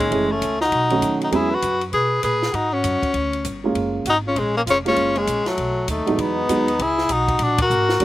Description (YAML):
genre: jazz, small-group swing and bop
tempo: 197 BPM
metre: 4/4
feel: swing 63% on 8ths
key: unclear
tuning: A4 = 440 Hz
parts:
  - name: bright tenor saxophone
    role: melody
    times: 0.0-8.0 s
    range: F#3 to G#4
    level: -20 LUFS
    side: left 2 dB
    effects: slapback echo
  - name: growling trumpet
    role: second line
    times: 0.0-8.0 s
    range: A3 to B4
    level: -27 LUFS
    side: right 2 dB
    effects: slapback echo
  - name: warm baby grand piano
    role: accompaniment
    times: 0.0-1.5, 3.6-8.0 s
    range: E2 to E#4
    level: -22 LUFS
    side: right 3 dB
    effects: none
  - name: upright bass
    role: bass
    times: 0.0-8.0 s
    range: E#1 to B2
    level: -28 LUFS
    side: right 1 dB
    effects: none
  - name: compact cocktail drum kit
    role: drums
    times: 0.0-8.0 s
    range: hi-hat, kick drum, ride cymbal, snare drum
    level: -30 LUFS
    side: equal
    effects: none
room: little or no reverb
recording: recorded outdoors, with no room sound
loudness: -18 LUFS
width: side -15 dB against mid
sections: 0.0-6.2 A section; 6.2-8.0 B section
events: band accent 7.5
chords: 0.1 F#m9; 0.7 B7; 1.3 E69; 2.5 G#7sus4; 3.1 G5; 3.8 F#maj9; 5.6 B7; 6.2 Emaj9; 7.4 A#7b13